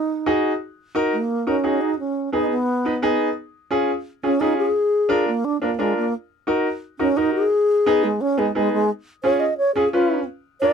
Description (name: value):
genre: latin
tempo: 174 BPM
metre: 4/4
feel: straight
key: Eb minor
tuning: A4 = 440 Hz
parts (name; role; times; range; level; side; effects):
- wooden-headed alto flute; melody; 0.0-10.7 s; Ab3 to Eb5; -20 LUFS; equal; none
- bright upright piano; accompaniment; 0.3-10.7 s; Cb4 to Cb5; -21 LUFS; equal; none
room: little or no reverb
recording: close, detailed microphones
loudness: -19 LUFS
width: side -7 dB against mid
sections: 0.6-10.7 A section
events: alto flute solo 0.6-10.7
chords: 0.0 Ebm; 2.0 Abm; 3.4 Db; 4.8 Bb7; 6.1 Ebm; 7.5 Abm; 8.9 Db